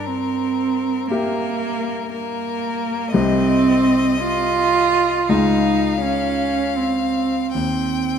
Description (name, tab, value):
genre	classical, slow romantic movement for piano trio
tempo	49-60 BPM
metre	4/4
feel	rubato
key	unclear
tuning	A4 = 441 Hz
part	clear violin	melody	0.0-8.2 s	Bb4 to G5	-26 LUFS	left 9 dB	none
part	rich cello	second line	0.0-8.2 s	Bb3 to F4	-19 LUFS	right 4 dB	none
part	warm grand piano	accompaniment	0.0-8.2 s	C2 to F5	-23 LUFS	left 4 dB	none
room	moderate scoring stage reverb, RT60 1.9 s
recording	none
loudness	-17 LUFS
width	side -7 dB against mid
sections	0.0-8.2 A section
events	none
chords	0.0 Edim/G; 3.1 Cm; 5.3 Db; 7.5 Eb